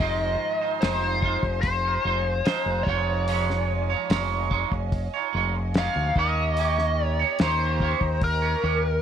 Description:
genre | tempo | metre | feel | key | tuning
psychedelic rock | 73 BPM | 4/4 | straight | unclear | A4 = 445 Hz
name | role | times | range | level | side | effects
lead guitar through a small cranked amp | melody | 0.0-9.0 s | Bb4 to F5 | -27 LUFS | left 2 dB | wah, overdrive, tape echo
dark studio string section | sustained chords | 0.0-9.0 s | Eb5 to C6 | -38 LUFS | right 12 dB | none
twangy electric guitar | riff | 0.0-8.9 s | Eb3 to Db5 | -28 LUFS | right 12 dB | flanger
growling fingered electric bass | bass | 0.0-9.0 s | F1 to Eb2 | -27 LUFS | left 1 dB | overdrive
tanpura | drone | 0.0-6.6 s | Ab2 to Ab3 | -43 LUFS | left 2 dB | none
cloth-damped thuddy drum kit | drums | 0.0-8.4 s | hi-hat, kick drum, snare drum | -26 LUFS | left 1 dB | none
room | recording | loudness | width
light reverb, small room ambience | 1960s-style stereo | -22 LUFS | side -8 dB against mid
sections
0.0-9.0 A section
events
none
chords
0.0 Fm7; 2.9 Dbadd9/F; 6.2 Eb7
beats
| 0.00 0.82 1.64 2.46 | 3.28 4.10 4.92 5.74 | 6.56 7.38 8.21

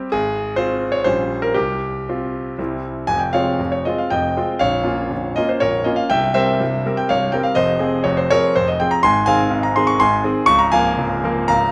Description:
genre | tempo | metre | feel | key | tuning
classical, romantic triple-time dance for piano with dotted rhythms | 111-143 BPM | 3/4 | rubato | F minor | A4 = 441 Hz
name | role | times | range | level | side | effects
clear concert grand piano | solo | 0.0-11.7 s | Bb0 to Db6 | -18 LUFS | equal | none
room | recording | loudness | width
moderate recital hall reverb, RT60 1.5 s | none | -18 LUFS | mono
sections
0.0-3.1 A section; 3.1-11.7 B section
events
none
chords
0.1 Fm/Ab; 1.1 Gm7b5/Bb; 1.5 Csus4; 2.6 C; 3.1 Fm; 4.6 Bbm; 6.1 C7; 7.6 Fm; 9.0 Ab; 10.5 Bbm/Db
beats
| 0.12 0.57 1.05 | 1.55 2.08 2.59 | 3.08 3.59 4.12 | 4.61 5.11 5.62 | 6.11 6.60 7.10 | 7.56 8.04 8.54 | 9.02 9.50 9.99 | 10.46 10.96 11.48

